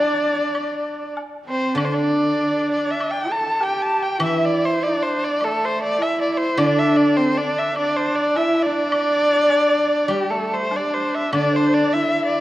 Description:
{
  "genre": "chinese traditional, Chinese chamber ensemble",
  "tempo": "100 BPM",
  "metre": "4/4",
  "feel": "rubato",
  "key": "D shang mode",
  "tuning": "A4 = 440 Hz",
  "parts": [
    { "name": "rich erhu", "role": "melody", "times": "0.0-12.4 s", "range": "G4 to A5", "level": "-20 LUFS", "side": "equal", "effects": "none" },
    { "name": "breathy bright large dizi", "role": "second line", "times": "0.0-1.2, 11.3-12.4 s", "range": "C5 to E5", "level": "-25 LUFS", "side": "left 4 dB", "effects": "none" },
    { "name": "bright horsehead fiddle", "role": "second line", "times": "0.0-12.4 s", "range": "G3 to A4", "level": "-24 LUFS", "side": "right 1 dB", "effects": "none" },
    { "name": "guzheng", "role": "accompaniment", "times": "0.0-12.4 s", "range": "D3 to G3", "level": "-22 LUFS", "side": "equal", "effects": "none" },
    { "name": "woodblock", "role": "percussion", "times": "0.5-11.5 s", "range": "none", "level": "-32 LUFS", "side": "equal", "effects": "none" }
  ],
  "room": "wet recital hall reverb, RT60 1.9 s",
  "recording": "worn, warbling old tape, cassette tape, warbly pitch drift",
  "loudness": "-17 LUFS",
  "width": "side -15 dB against mid",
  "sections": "0.0-1.8 A section; 1.8-12.4 B section",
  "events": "none",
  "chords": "none",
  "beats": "0.54 1.16 | 1.77 2.39 3.00 3.61 | 4.21 4.81 5.41 6.00 | 6.59 7.18 7.76 8.35 | 8.92 9.51 10.10 10.71 | 11.33 11.95"
}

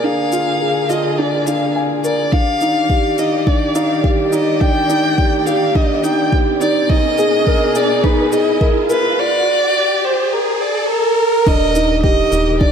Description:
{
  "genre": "piano and strings electronica",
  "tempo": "105 BPM",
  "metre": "4/4",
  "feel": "straight",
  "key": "Eb major",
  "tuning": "A4 = 440 Hz",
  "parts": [
    { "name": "warm violin", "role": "melody", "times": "0.0-12.7 s", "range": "Bb4 to G5", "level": "-18 LUFS", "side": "equal", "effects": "digital delay" },
    { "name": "warm string quartet", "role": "sustained chords", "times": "0.0-12.7 s", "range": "Cb3 to D5", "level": "-24 LUFS", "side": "left 1 dB", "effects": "sidechain pumping" },
    { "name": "felt-muted upright piano", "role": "riff", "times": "0.0-12.7 s", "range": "D4 to Ab5", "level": "-17 LUFS", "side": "equal", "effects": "digital delay" },
    { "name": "round analog bass", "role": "bass", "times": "0.0-12.7 s", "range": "Eb1 to Eb2", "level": "-21 LUFS", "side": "equal", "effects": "sidechain pumping, high-pass filter" },
    { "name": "electronic shaker and crash cymbal", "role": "drums", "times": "0.3-12.4 s", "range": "none", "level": "-33 LUFS", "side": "left 1 dB", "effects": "none" },
    { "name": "electronic kick drum", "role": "drums", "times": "2.3-12.7 s", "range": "none", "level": "-16 LUFS", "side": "equal", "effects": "none" },
    { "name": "riser", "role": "sound effects", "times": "4.5-11.5 s", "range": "none", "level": "-22 LUFS", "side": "right 2 dB", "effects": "none" }
  ],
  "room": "moderate echo chamber reverb, RT60 2.4 s",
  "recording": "none",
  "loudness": "-13 LUFS",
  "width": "side -7 dB against mid",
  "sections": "0.0-11.5 A section; 11.5-12.7 B section",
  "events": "build-up 0.0-11.5; riser 4.5-11.5; drop 11.5-12.7",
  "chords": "0.0 Bb7; 2.3 Ebmaj7; 6.9 Abmadd9; 9.2 N.C.; 11.5 Ebmaj7",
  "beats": "| 0.04 0.61 1.18 1.75 | 2.32 2.90 3.47 4.04 | 4.61 5.18 5.75 6.32 | 6.89 7.47 8.04 8.61 | 9.18 9.75 10.32 10.89 | 11.47 12.04 12.61"
}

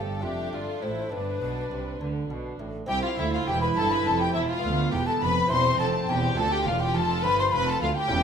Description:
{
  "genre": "classical, baroque-style concerto movement with solo episodes",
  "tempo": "69 BPM (dotted quarters)",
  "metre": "6/8",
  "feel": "straight",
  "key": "C major",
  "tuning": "A4 = 440 Hz",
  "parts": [
    { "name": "warm studio violin section", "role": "melody", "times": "0.0-8.2 s", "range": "G4 to C6", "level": "-31 LUFS", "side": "left 4 dB", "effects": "none" },
    { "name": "warm chamber violin section", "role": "second line", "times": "0.0-8.2 s", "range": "D4 to C5", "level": "-30 LUFS", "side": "left 2 dB", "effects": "none" },
    { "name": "dark chamber viola section", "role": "accompaniment", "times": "0.0-8.2 s", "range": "B3 to G4", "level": "-32 LUFS", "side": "right 6 dB", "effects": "none" },
    { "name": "lute", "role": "accompaniment", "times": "0.0-8.2 s", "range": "D2 to F4", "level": "-36 LUFS", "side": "left 1 dB", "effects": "none" },
    { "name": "warm chamber cello section", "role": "bass", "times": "0.0-8.2 s", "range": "C2 to D3", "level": "-32 LUFS", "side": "right 2 dB", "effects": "none" },
    { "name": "warm studio double bass section", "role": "bass", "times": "0.0-8.2 s", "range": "E1 to D2", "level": "-31 LUFS", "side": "right 3 dB", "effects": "none" },
    { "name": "mellow hollow concert flute", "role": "melody", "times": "0.2-8.2 s", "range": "B4 to C6", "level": "-30 LUFS", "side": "left 3 dB", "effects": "none" }
  ],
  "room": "wet recital hall reverb, RT60 1.3 s",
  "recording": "none",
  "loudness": "-23 LUFS",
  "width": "side -7 dB against mid",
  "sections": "0.0-2.9 A section; 2.9-8.2 B section",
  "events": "none",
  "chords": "0.2 Dm/F; 1.1 G; 2.9 C; 4.6 Bdim; 5.5 C/E; 6.4 Dm",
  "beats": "0.24 | 1.12 2.01 | 2.89 3.77 | 4.64 5.51 | 6.38 7.24 | 8.11"
}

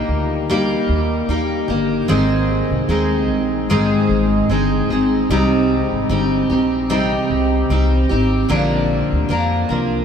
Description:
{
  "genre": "acoustic pop",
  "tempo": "75 BPM",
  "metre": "4/4",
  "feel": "swing 55% on 16ths",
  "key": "unclear",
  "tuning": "A4 = 440 Hz",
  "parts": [
    { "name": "picked steel-string acoustic guitar", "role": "accompaniment", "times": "0.0-10.0 s", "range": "Ab2 to Bb4", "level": "-16 LUFS", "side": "equal", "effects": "lush chorus" },
    { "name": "upright bass", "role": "bass", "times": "0.1-10.0 s", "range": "G1 to F2", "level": "-21 LUFS", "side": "equal", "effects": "none" }
  ],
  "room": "wet huge ambient reverb, RT60 9.0 s",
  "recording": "dreamy mix soaked in reverb",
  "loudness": "-15 LUFS",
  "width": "side -7 dB against mid",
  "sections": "0.0-10.0 A section",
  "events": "none",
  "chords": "0.0 Eb; 2.1 Ab; 8.5 Bb",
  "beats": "0.49 1.29 | 2.09 2.89 3.69 4.49 | 5.29 6.10 6.90 7.70 | 8.50 9.30"
}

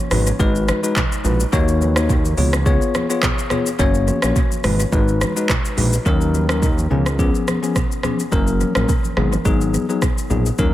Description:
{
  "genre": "afrobeats",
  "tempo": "106 BPM",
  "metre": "4/4",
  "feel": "swing 55% on 16ths",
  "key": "unclear",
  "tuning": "A4 = 440 Hz",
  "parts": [
    { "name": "bell-like tine electric piano", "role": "accompaniment", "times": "0.1-10.7 s", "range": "F3 to Db5", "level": "-20 LUFS", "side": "left 3 dB", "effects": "dub echo" },
    { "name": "fat analog bass", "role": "bass", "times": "0.1-10.7 s", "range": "Gb1 to Eb2", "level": "-19 LUFS", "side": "right 1 dB", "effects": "none" },
    { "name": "afro-pop drum kit", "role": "drums", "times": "0.1-10.7 s", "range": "handclaps, hi-hat, kick drum, rim click, shaker", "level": "-20 LUFS", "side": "right 1 dB", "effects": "dub echo" },
    { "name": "congas", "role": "percussion", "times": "0.1-10.4 s", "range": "none", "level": "-29 LUFS", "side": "right 5 dB", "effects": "dub echo" }
  ],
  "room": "light reverb",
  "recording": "echo-heavy mix",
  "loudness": "-16 LUFS",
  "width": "side -14 dB against mid",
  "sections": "0.0-6.1 A section; 6.1-10.7 B section",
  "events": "none",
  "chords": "0.1 Abm7; 1.5 Ebm7; 2.4 Db7; 3.8 Gb; 4.6 Abm7; 6.1 Ebm7; 6.9 Db7; 8.3 Gb; 9.2 Abm7",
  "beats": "0.40 0.96 | 1.53 2.10 2.66 3.23 | 3.79 4.36 4.93 5.49 | 6.06 6.62 7.19 7.76 | 8.32 8.89 9.46 10.02 | 10.59"
}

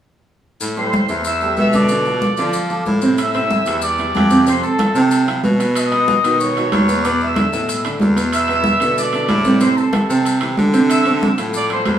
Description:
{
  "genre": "latin, salsa",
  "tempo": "187 BPM",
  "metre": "4/4",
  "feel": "straight",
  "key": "A minor",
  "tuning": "A4 = 440 Hz",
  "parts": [
    { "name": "bright baritone saxophone", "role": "bass", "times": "0.6-12.0 s", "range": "E2 to F3", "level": "-20 LUFS", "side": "equal", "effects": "none" },
    { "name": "congas", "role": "percussion", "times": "0.6-12.0 s", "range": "none", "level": "-21 LUFS", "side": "equal", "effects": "none" },
    { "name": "maracas", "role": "percussion", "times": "0.6-12.0 s", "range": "none", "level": "-31 LUFS", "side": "left 3 dB", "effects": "none" },
    { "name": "mellow trumpet section", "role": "melody", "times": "0.8-12.0 s", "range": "A4 to E6", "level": "-19 LUFS", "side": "equal", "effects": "none" },
    { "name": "clear concert grand piano", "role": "accompaniment", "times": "0.8-12.0 s", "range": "B2 to E5", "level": "-19 LUFS", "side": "right 2 dB", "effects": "none" },
    { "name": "timbales", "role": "percussion", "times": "3.2-12.0 s", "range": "none", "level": "-24 LUFS", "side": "right 2 dB", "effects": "none" }
  ],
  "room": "wet large studio reverb, RT60 0.9 s",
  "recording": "band playing live in one room, small room ambience",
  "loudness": "-14 LUFS",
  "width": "side -10 dB against mid",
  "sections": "0.6-3.2 A section; 3.2-12.0 B section",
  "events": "none",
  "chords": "0.6 Am7; 1.9 Bm7b5; 3.2 Am7; 4.5 Fmaj7; 5.8 B; 7.0 E7sus4; 9.6 Am7; 10.9 Dm7",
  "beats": "| 0.61 0.93 1.25 1.57 | 1.90 2.22 2.54 2.86 | 3.18 3.51 3.83 4.15 | 4.47 4.79 5.11 5.44 | 5.76 6.08 6.40 6.72 | 7.04 7.37 7.69 8.01 | 8.33 8.65 8.97 9.29 | 9.61 9.94 10.26 10.58 | 10.90 11.22 11.54 11.86"
}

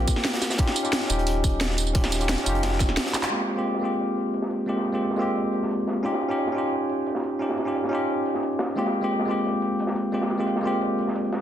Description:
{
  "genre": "liquid drum and bass",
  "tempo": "176 BPM",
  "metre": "4/4",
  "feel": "straight",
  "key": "Ab major",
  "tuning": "A4 = 440 Hz",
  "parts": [
    { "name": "bell-like tine electric piano", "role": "accompaniment", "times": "0.0-11.4 s", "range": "Ab3 to G4", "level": "-24 LUFS", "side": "equal", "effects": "vintage 12-bit sampler grit, tape echo" },
    { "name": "saturated sub bass", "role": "bass", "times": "0.0-3.0 s", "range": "Eb1 to F1", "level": "-26 LUFS", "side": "equal", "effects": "none" },
    { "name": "crunchy breakbeat drum kit", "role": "drums", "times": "0.1-11.4 s", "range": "hi-hat, snare drum", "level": "-33 LUFS", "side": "equal", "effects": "high-pass filter on hats, low-pass filter on hats, high-pass filter on snare, low-pass filter on snare, high-pass filter on room, low-pass filter on room" },
    { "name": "drum and bass drum kit", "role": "drums", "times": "0.1-11.4 s", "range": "crash cymbal, handclaps, hi-hat, snare drum, tambourine", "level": "-27 LUFS", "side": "right 1 dB", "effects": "low-pass filter on hats, low-pass filter on perc, low-pass filter on snare, low-pass filter on cymbals" },
    { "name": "electronic kick drum", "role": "drums", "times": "0.1-2.9 s", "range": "none", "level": "-23 LUFS", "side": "equal", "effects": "none" }
  ],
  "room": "moderate digital room reverb, RT60 1.1 s, digital ambience",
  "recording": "dense, heavily limited modern master",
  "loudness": "-22 LUFS",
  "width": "side -10 dB against mid",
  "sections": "0.0-3.3 A section; 3.3-11.4 B section",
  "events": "drum fill 3.1; band accent 3.2",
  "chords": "0.0 Abmaj13 (rootless); 0.6 Eb9; 3.3 Abmaj13; 6.0 Eb9; 8.8 Abmaj13",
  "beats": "0.25 | 0.59 0.93 1.27 1.61 | 1.95 2.29 2.63 2.98 | 3.32 3.66 4.00 4.34 | 4.68 5.02 5.36 5.70 | 6.04 6.38 6.72 7.07 | 7.41 7.75 8.09 8.43 | 8.77 9.11 9.45 9.79 | 10.13 10.47 10.82 11.16"
}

